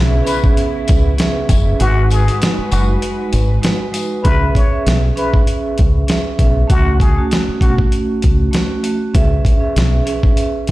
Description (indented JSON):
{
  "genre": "hip hop, boom-bap hip-hop",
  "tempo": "98 BPM",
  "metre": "4/4",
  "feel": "swing 55% on 16ths",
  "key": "C# minor",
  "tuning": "A4 = 442 Hz",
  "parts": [
    { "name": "vibraphone with medium mallets", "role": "accompaniment", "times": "0.0-10.7 s", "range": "G#3 to E5", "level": "-20 LUFS", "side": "right 3 dB", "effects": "high-pass filter, low-pass filter" },
    { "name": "muted studio string section", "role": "sustained chords", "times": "0.0-4.2 s", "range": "C#3 to B4", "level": "-28 LUFS", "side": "left 5 dB", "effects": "high-pass filter, low-pass filter" },
    { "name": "deep dub fingered electric bass", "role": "bass", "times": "0.0-10.7 s", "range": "F#1 to C#2", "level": "-14 LUFS", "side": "equal", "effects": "none" },
    { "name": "trumpet with plunger mute", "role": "melody", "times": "0.3-7.8 s", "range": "F#4 to C#5", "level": "-23 LUFS", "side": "left 3 dB", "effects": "high-pass filter, low-pass filter, tape echo" },
    { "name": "dusty soul sampler-style drum kit", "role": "drums", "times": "0.3-10.7 s", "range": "hi-hat, kick drum, snare drum", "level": "-15 LUFS", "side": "equal", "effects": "none" },
    { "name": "tambourine", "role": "percussion", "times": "0.3-4.1 s", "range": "none", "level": "-33 LUFS", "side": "left 11 dB", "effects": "none" }
  ],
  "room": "small room ambience",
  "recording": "played on a big sound system in a bare room, large studio reverb",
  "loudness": "-12 LUFS",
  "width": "side -18 dB against mid",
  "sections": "0.0-4.2 A section; 4.2-10.7 B section",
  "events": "kick muted 1.8-4.2",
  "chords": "0.0 C#m7; 1.8 G#m7; 4.2 C#m7; 6.7 F#m; 9.1 C#m7"
}